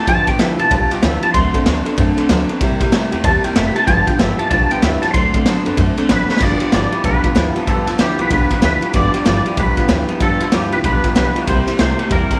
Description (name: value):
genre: rockabilly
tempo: 189 BPM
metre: 4/4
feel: swing 63% on 8ths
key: G mixolydian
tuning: A4 = 439 Hz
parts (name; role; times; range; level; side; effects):
- twangy electric guitar; melody; 0.0-12.4 s; G4 to C6; -21 LUFS; equal; ensemble chorus, tape echo
- picked steel-string acoustic guitar; accompaniment; 0.0-12.4 s; G2 to A4; -23 LUFS; equal; none
- electric guitar through a small old amp; riff; 0.0-12.4 s; G2 to B3; -25 LUFS; equal; analog chorus
- upright bass; bass; 0.1-12.3 s; F1 to C3; -24 LUFS; equal; none
- raw garage drum kit; drums; 0.1-12.4 s; crash cymbal, kick drum, ride cymbal, snare drum; -20 LUFS; equal; none
room: little or no reverb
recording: none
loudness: -16 LUFS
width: mono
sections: 0.0-6.4 A section; 6.4-12.4 B section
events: clean electric guitar solo 0.0-6.4; drum fill 6.3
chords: 0.1 G7; 1.3 D7; 2.6 C7; 3.9 G7; 5.1 D7; 6.4 G7; 11.5 C7